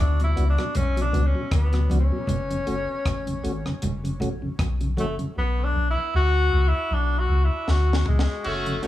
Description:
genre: roots reggae.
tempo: 78 BPM.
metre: 4/4.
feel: swing 56% on 16ths.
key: unclear.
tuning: A4 = 439 Hz.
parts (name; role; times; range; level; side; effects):
warm tenor saxophone; melody; 0.0-8.9 s; G#3 to F#4; -27 LUFS; left 1 dB; dub echo.
soft dub sub bass; bass; 0.0-8.9 s; F#1 to D2; -22 LUFS; equal; none.
mellow tonewheel organ; accompaniment; 0.2-8.9 s; F#2 to F#4; -31 LUFS; left 1 dB; slow rotary speaker, analog delay.
deep reggae drum kit; drums; 0.2-8.9 s; crash cymbal, hi-hat, kick drum, rim click, snare drum, toms; -30 LUFS; equal; none.
congas; percussion; 0.8-5.2 s; none; -30 LUFS; right 3 dB; none.
clear horn section; second line; 8.4-8.9 s; F#3 to F#4; -28 LUFS; equal; none.
room: studio reverb.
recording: small room ambience.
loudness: -21 LUFS.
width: side -14 dB against mid.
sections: 0.0-8.4 A section.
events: tenor saxophone solo 0.0-8.4; drums muted 5.4-8.4; drum fill 7.7-8.4.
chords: 0.0 Bm; 2.3 F#m; 5.4 Bm.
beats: 0.74 1.51 | 2.28 3.05 3.82 4.59 | 5.36 6.13 6.90 7.67 | 8.44.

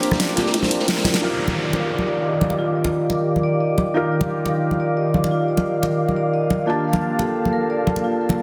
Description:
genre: liquid drum and bass.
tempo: 176 BPM.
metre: 4/4.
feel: straight.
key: unclear.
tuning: A4 = 440 Hz.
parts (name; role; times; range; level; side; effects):
felt-muted upright piano; accompaniment; 0.0-8.4 s; Bb3 to A5; -29 LUFS; equal; tape echo.
airy breathy pad; sustained chords; 0.0-8.4 s; Eb3 to D6; -26 LUFS; equal; chorus.
vibraphone with medium mallets; arpeggios; 0.0-8.4 s; F4 to Eb5; -26 LUFS; equal; low-pass filter, tape echo.
crunchy breakbeat drum kit; drums; 0.0-1.2 s; hi-hat, snare drum; -27 LUFS; equal; high-pass filter on hats, studio reverb, high-pass filter on snare, high-pass filter on room.
pop drum kit; drums; 0.0-7.9 s; hi-hat, rim click, snare drum; -26 LUFS; equal; low-pass filter on hats, studio reverb, low-pass filter on snare.
congas; percussion; 0.1-8.4 s; none; -26 LUFS; equal; none.
downlifter; sound effects; 1.2-3.9 s; none; -32 LUFS; equal; none.
room: moderate lush hall reverb, RT60 1.9 s, studio reverb.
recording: dense, heavily limited modern master.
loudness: -20 LUFS.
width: mono.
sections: 0.0-1.2 A section; 1.2-8.4 B section.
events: drum fill 1.1; band accent 1.1.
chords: 0.0 Bb69; 1.2 Ebmaj9; 6.7 Gm9.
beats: 0.20 0.54 0.88 | 1.22 1.56 1.90 2.25 | 2.59 2.93 3.27 3.61 | 3.95 4.29 4.63 4.97 | 5.31 5.65 6.00 6.34 | 6.68 7.02 7.36 7.70 | 8.04 8.38.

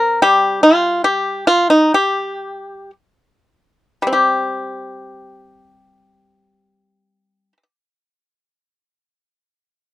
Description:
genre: chinese traditional, Chinese solo plucked strings.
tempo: 46-77 BPM.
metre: 2/4.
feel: rubato.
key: unclear.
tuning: A4 = 440 Hz.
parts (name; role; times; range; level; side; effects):
pipa; solo; 0.0-7.6 s; C3 to Bb4; -13 LUFS; left 1 dB; none.
room: little or no reverb.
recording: dry, close 1970s-style studio recording.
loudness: -13 LUFS.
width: side -15 dB against mid.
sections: 0.0-4.1 A section; 4.1-9.2 B section.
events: slowing down 0.2-4.1.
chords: none.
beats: | 0.24 1.05 | 1.93 2.93 | 4.13 5.41 | 6.64.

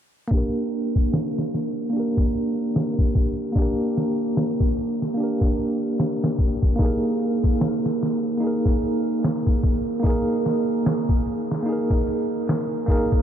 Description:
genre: trip hop.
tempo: 74 BPM.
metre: 4/4.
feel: swing 59% on 16ths.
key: G phrygian.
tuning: A4 = 440 Hz.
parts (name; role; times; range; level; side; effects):
bell-like tine electric piano; accompaniment; 0.3-13.2 s; Bb3 to Bb4; -23 LUFS; right 1 dB; tremolo, vintage 12-bit sampler grit, low-pass filter, tape echo.
trip hop sampler-style drum kit; drums; 0.3-13.2 s; hi-hat, kick drum, snare drum; -23 LUFS; left 1 dB; low-pass filter on hats, studio reverb, low-pass filter on kick, low-pass filter on snare.
room: wet huge ambient reverb, RT60 7.5 s.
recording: dreamy mix soaked in reverb, low-pass filter.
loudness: -20 LUFS.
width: side -9 dB against mid.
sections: 0.3-13.2 A section.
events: filter sweep on tine electric piano 0.3-13.2; filter sweep 0.3-13.2.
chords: 0.3 Gm; 6.8 Absus2.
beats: | 0.32 1.13 1.94 2.75 | 3.56 4.37 5.18 5.99 | 6.80 7.61 8.42 9.23 | 10.04 10.86 11.67 12.48.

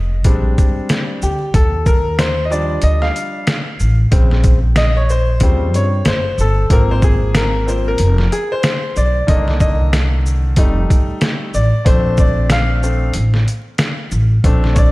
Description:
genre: hip hop, jazz-hop.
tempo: 93 BPM.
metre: 4/4.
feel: swing 59% on 16ths.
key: Bb major.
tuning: A4 = 438 Hz.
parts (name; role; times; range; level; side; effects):
bright upright piano; accompaniment; 0.0-14.9 s; Db3 to F5; -19 LUFS; left 1 dB; none.
upright bass; bass; 0.0-14.9 s; F1 to G2; -15 LUFS; equal; none.
trip hop sampler-style drum kit; drums; 0.2-14.9 s; hi-hat, kick drum, shaker, snare drum; -16 LUFS; equal; none.
room: light reverb, digital ambience.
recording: vinyl crackle.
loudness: -13 LUFS.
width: side -20 dB against mid.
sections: 0.0-14.9 A section.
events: upright piano solo 0.0-14.9.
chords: 0.2 Bb13; 1.5 Ebmaj9; 4.1 Bbm7; 5.4 Eb13; 6.7 Ab69; 9.3 Cm7; 10.6 F9; 11.9 Bbmaj7.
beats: 0.25 0.89 | 1.54 2.19 2.83 3.48 | 4.12 4.76 5.41 6.06 | 6.70 7.35 7.99 8.64 | 9.28 9.93 10.57 11.22 | 11.86 12.51 13.15 13.80 | 14.44.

